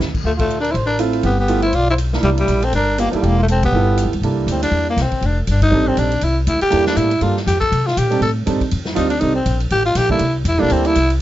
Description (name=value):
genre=jazz, small-group swing and bop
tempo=241 BPM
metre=4/4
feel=swing 58% on 8ths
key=C mixolydian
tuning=A4 = 441 Hz
part: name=upright bass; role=bass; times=0.0-11.2 s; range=E1 to C3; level=-18 LUFS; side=equal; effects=none
part: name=swinging big-band drum kit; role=drums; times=0.0-11.2 s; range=crash cymbal, hi-hat, kick drum, ride cymbal, snare drum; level=-27 LUFS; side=equal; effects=none
part: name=growling tenor saxophone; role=melody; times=0.3-11.1 s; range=F3 to A4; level=-18 LUFS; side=left 1 dB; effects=none
part: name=breathy trumpet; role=second line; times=0.3-4.1 s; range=D4 to D5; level=-26 LUFS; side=right 3 dB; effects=none
part: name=clear baby grand piano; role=accompaniment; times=1.0-10.9 s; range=G3 to Bb4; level=-20 LUFS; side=right 4 dB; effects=none
room=light reverb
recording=dark, warm production, nothing above 7.7 kHz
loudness=-14 LUFS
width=side -14 dB against mid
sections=0.0-4.2 A section; 4.2-11.2 B section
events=band accent 0.4, 3.6; tenor saxophone solo 4.2-11.2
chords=0.3 Dm7; 1.2 G13; 2.2 C13; 3.7 G13; 4.2 C13; 5.2 F13; 6.2 C13; 7.2 Gm7; 7.7 Csus2; 8.2 F13; 10.2 C13